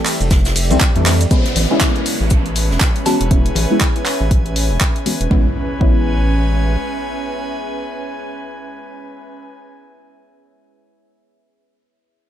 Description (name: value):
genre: deep house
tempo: 120 BPM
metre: 4/4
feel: swing 59% on 16ths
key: A major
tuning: A4 = 440 Hz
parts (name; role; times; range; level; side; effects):
- warm velvety synth lead; melody; 0.0-0.8 s; A4; -34 LUFS; right 3 dB; none
- deep dark ambient pad; sustained chords; 0.0-9.3 s; G4 to E5; -28 LUFS; equal; chorus, built-in reverb, sidechain pumping
- deep mellow chord stab; stabs; 0.0-9.9 s; E3 to F#4; -21 LUFS; left 1 dB; chorus, sidechain pumping, ping-pong delay
- deep house drum kit; drums; 0.1-5.3 s; handclaps, hi-hat, ride cymbal, shaker; -21 LUFS; right 1 dB; none
- jazz brush drum kit; drums; 0.1-3.2 s; hi-hat, shaker, snare drum; -27 LUFS; equal; sidechain pumping on hats, high-pass filter on hats, high-pass filter on snare, sidechain pumping on perc, high-pass filter on perc, high-pass filter on room
- round analog bass; bass; 0.2-6.8 s; E1 to F2; -17 LUFS; equal; sidechain pumping
- electronic kick drum; drums; 0.3-6.0 s; none; -15 LUFS; equal; none
- congas; percussion; 0.3-5.2 s; none; -26 LUFS; left 4 dB; sidechain pumping on perc
- downlifter and impact; sound effects; 1.3-9.4 s; none; -27 LUFS; equal; none
- airy breathy pad; texture; 1.3-9.5 s; C#4 to G#5; -26 LUFS; right 2 dB; chorus, sidechain pumping
- soft synth bell; melody; 3.1-3.2 s; A5; -26 LUFS; right 4 dB; chorus, tape echo
room: light reverb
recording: none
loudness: -14 LUFS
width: side -11 dB against mid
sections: 0.0-1.3 A section; 1.3-5.3 B section; 5.3-9.3 C section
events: drop 0.0-1.3; drum fill 1.1; filter sweep on synth stab 1.3-5.3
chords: 0.0 Fmaj9; 1.3 Amaj9